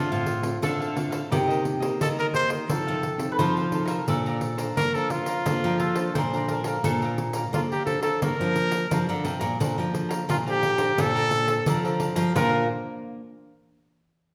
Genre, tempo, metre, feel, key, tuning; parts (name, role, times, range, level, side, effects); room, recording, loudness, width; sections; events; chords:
samba and choro; 87 BPM; 4/4; straight; Bb major; A4 = 441 Hz
clear trumpet; melody; 0.0-12.7 s; F4 to C5; -28 LUFS; equal
cavaquinho; accompaniment; 0.0-12.6 s; D4 to Bb5; -36 LUFS; equal
nylon-string guitar; accompaniment; 0.0-13.2 s; A2 to C5; -34 LUFS; equal
nylon-string guitar; bass; 0.0-12.7 s; A2 to Bb3; -32 LUFS; equal
pandeiro; percussion; 0.1-12.5 s; -32 LUFS; equal
mandolin; second line; 0.6-7.3, 12.4-12.7 s; F4 to C5; -32 LUFS; equal
wet recital hall reverb, RT60 1.3 s; recorded in a church or concert hall; -25 LUFS; mono
0.0-9.6 A section; 9.6-12.4 B section; 12.4-14.3 C section
0.0 Dm7; 1.3 Cm7; 2.7 F7; 4.1 Bbmaj9